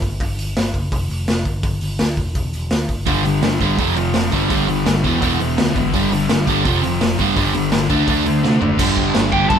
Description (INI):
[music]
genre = punk rock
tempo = 168 BPM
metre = 4/4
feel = straight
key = G major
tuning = A4 = 441 Hz
[part]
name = overdriven picked electric bass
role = bass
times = 0.0-9.6 s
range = E1 to C3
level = -23 LUFS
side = equal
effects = none
[part]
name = raw garage drum kit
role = drums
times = 0.0-9.6 s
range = crash cymbal, hi-hat, kick drum, snare drum, toms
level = -21 LUFS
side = equal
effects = none
[part]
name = crunchy overdriven guitar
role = riff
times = 3.1-9.6 s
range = E2 to D4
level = -20 LUFS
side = right 6 dB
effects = none
[part]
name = fuzz guitar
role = riff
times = 3.1-9.6 s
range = E2 to D4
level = -22 LUFS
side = left 2 dB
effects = distortion
[part]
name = sludgy distorted guitar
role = riff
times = 3.1-9.6 s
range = E2 to D4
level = -23 LUFS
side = left 6 dB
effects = overdrive
[part]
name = biting lead guitar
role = melody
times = 9.3-9.6 s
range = G4 to A5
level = -16 LUFS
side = left 1 dB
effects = overdrive
[sound]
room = light reverb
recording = band playing live in one room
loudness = -15 LUFS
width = side -8 dB against mid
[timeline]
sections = 0.0-8.8 A section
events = drum fill 8.4-8.8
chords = 0.2 N.C.; 1.5 G5; 2.2 Em; 3.1 G5; 3.8 F5; 4.3 G5; 5.0 Em; 5.9 G5; 6.7 F5; 7.2 G5; 7.9 D; 8.8 G5